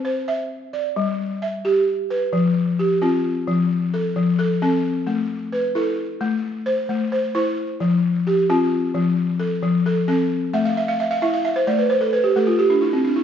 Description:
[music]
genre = west african traditional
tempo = 88 BPM (dotted quarters)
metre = 12/8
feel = straight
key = unclear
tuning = A4 = 441 Hz
[part]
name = balafon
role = solo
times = 0.0-13.2 s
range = F3 to F5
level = -18 LUFS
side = left 1 dB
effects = none
[sound]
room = wet recital hall reverb, RT60 1.5 s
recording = recorded in a church or concert hall, nothing above 7.6 kHz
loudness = -18 LUFS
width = side -9 dB against mid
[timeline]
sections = 0.0-2.3 A section; 2.3-13.2 B section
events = balafon fill 10.5-13.2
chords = 0.0 C; 1.0 G; 2.3 F; 5.1 Am; 7.8 F; 10.5 A5

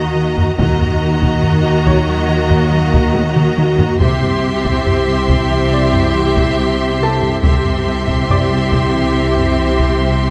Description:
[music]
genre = cinematic, hybrid orchestral and electronic film score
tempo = 70 BPM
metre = 4/4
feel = straight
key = unclear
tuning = A4 = 440 Hz
[part]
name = warm symphonic violin section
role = melody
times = 0.0-10.3 s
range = Bb5 to C6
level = -27 LUFS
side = equal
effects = none
[part]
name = warm symphonic violin section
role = second line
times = 0.0-10.3 s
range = Eb5 to E5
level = -27 LUFS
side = equal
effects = none
[part]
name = warm studio viola section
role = accompaniment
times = 0.0-10.3 s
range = Gb4 to G4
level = -22 LUFS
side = equal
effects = none
[part]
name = dark French horn section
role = sustained chords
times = 0.0-10.3 s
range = C3 to Gb4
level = -24 LUFS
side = equal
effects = none
[part]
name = rich symphonic cello section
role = bass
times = 0.0-10.3 s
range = C3 to Eb3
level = -22 LUFS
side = equal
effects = none
[part]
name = warm symphonic double bass section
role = bass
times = 0.0-10.3 s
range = C2 to Eb2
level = -22 LUFS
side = equal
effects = none
[part]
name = bright baby grand piano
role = texture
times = 0.0-10.3 s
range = A4 to D6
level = -29 LUFS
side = equal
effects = none
[part]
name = thumb-piano-like synth pluck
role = arpeggios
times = 0.2-10.1 s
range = C3 to Eb4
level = -27 LUFS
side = equal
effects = none
[part]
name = taiko ensemble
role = drums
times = 0.4-10.3 s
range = none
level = -20 LUFS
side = equal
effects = none
[sound]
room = moderate concert hall reverb, RT60 2.0 s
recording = none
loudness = -14 LUFS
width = mono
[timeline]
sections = 0.0-10.3 A section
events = drum fill 3.1-4.0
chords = 0.0 Ebm; 4.0 C

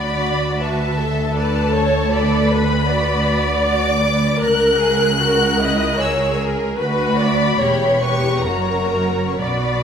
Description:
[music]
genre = classical, slow romantic movement for string orchestra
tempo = 60-81 BPM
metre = 3/4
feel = rubato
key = B minor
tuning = A4 = 440 Hz
[part]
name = clear symphonic violin section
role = melody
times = 0.0-9.8 s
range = A5 to F#6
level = -23 LUFS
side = left 3 dB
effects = none
[part]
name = rich symphonic violin section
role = second line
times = 0.0-9.8 s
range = E4 to E5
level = -23 LUFS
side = left 4 dB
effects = none
[part]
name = rich symphonic viola section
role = accompaniment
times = 0.0-9.8 s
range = F#4 to D#5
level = -20 LUFS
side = right 1 dB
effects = none
[part]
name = rich studio double bass section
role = bass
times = 0.0-9.8 s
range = E1 to D2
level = -23 LUFS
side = right 2 dB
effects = none
[part]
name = rich symphonic cello section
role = bass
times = 0.0-9.8 s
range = C#2 to B2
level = -23 LUFS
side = right 2 dB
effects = none
[sound]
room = moderate scoring stage reverb, RT60 1.8 s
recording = none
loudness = -15 LUFS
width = side -7 dB against mid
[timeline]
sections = 0.0-9.8 A section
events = none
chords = 0.0 D; 2.1 Bm/D; 4.4 A#dim/C#; 6.8 Bm/D; 7.6 C#dim/E; 8.5 F#

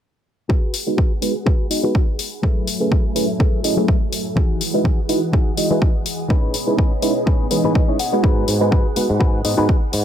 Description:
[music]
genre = filtered disco house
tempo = 124 BPM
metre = 4/4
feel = swing 55% on 16ths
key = unclear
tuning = A4 = 440 Hz
[part]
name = string machine, full ensemble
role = sustained chords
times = 0.5-10.0 s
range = E3 to D#6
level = -27 LUFS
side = equal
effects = phaser, ensemble chorus, sidechain pumping, low-pass filter
[part]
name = direct-recorded clean electric guitar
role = riff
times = 0.5-10.0 s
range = A2 to F#5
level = -25 LUFS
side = left 4 dB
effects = sidechain pumping, low-pass filter
[part]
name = electronic kick drum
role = drums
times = 0.5-9.8 s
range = none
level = -17 LUFS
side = equal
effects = overdrive
[part]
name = tambourine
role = percussion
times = 0.5-9.9 s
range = none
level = barely audible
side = none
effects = none
[part]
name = electronic hi-hat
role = drums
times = 0.7-10.0 s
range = none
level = -25 LUFS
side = left 6 dB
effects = overdrive, sidechain pumping on hats
[part]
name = reed electric piano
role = accompaniment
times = 0.9-9.7 s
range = E3 to D#5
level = -21 LUFS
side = right 1 dB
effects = overdrive, phaser, sidechain pumping, low-pass filter
[part]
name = modern bright fingered electric bass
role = bass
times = 8.2-10.0 s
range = G#2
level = -20 LUFS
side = equal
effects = sidechain pumping, low-pass filter
[sound]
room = digital ambience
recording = none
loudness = -16 LUFS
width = side -10 dB against mid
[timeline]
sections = 0.5-10.0 A section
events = filter sweep 0.5-10.0; clean electric guitar fill 7.5-8.2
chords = 0.5 G#m7; 2.4 F#m11; 4.4 Emaj9; 6.3 Amaj9#11; 8.2 G#m7

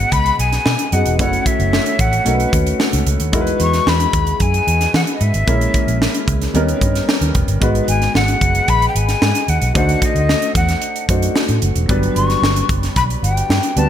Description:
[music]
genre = polished 1980s jazz-funk pop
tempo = 112 BPM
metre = 4/4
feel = straight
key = B major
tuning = A4 = 439 Hz
[part]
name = breathy jazz flute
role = melody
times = 0.0-13.9 s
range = D#5 to C#6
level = -20 LUFS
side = left 3 dB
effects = ping-pong delay
[part]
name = warm concert grand piano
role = accompaniment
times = 0.0-13.9 s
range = F#3 to D#5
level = -21 LUFS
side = left 1 dB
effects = wide subtle chorus
[part]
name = vintage muted fingered electric bass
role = bass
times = 0.0-13.9 s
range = E1 to E3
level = -18 LUFS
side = equal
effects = none
[part]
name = crisp fusion drum kit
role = drums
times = 0.1-13.9 s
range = hi-hat, kick drum, snare drum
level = -19 LUFS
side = right 1 dB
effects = gated reverb
[sound]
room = moderate plate reverb, RT60 2.0 s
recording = bright 1980s-style digital production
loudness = -14 LUFS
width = side -10 dB against mid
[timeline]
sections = 0.0-13.9 A section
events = none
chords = 0.0 B6; 1.2 F#m7; 2.3 B9; 3.3 Emaj9; 5.5 A#m7b5; 6.5 D#7b13; 7.6 G#m7; 9.8 D7b9; 11.9 Gmaj7

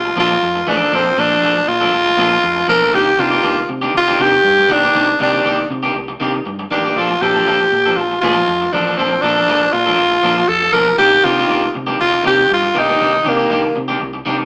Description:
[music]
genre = disco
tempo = 119 BPM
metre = 4/4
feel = straight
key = Bb major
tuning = A4 = 442 Hz
[part]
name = growling tenor saxophone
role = melody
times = 0.0-13.8 s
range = Bb3 to Bb4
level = -13 LUFS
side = equal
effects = none
[part]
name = hollow-body short-scale fingered electric bass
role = bass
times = 0.0-14.5 s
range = A1 to C3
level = -26 LUFS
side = equal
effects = none
[part]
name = electric guitar at the edge of break-up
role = accompaniment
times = 0.1-14.4 s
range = Eb3 to A4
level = -18 LUFS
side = equal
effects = none
[sound]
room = wet studio reverb, RT60 0.8 s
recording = band playing live in one room, small speaker sound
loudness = -12 LUFS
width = side -38 dB against mid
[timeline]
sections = 0.0-14.5 A section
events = none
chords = 0.0 Bbmaj7; 2.9 Cm9; 7.0 Bbmaj7; 11.0 Cm9

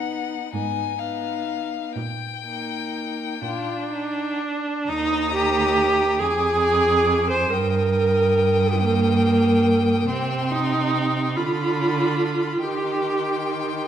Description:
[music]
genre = classical, slow romantic movement for string quartet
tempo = 40-48 BPM (dotted quarters)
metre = 6/8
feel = rubato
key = Eb major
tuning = A4 = 440 Hz
[part]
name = rich violin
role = melody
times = 0.0-13.9 s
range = F5 to Eb6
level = -31 LUFS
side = left 10 dB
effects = none
[part]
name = rich violin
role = second line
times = 0.0-13.9 s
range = D4 to B5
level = -30 LUFS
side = left 5 dB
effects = none
[part]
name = warm viola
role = accompaniment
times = 0.0-13.9 s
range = Bb3 to C5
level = -22 LUFS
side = right 1 dB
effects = none
[part]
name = warm cello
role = bass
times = 0.0-13.9 s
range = Eb2 to Eb3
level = -25 LUFS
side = right 4 dB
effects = none
[sound]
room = wet recital hall reverb, RT60 1.4 s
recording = none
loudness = -20 LUFS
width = side -10 dB against mid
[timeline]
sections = 0.0-4.9 A section; 4.9-13.9 A section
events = none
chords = 0.0 B; 0.5 Fm7b5/Ab; 2.0 Eb/Bb; 3.4 Bb; 4.9 Eb; 6.2 Ddim/F; 7.5 Eb/G; 10.1 Cm; 11.4 Bdim/D; 12.6 Cm/Eb

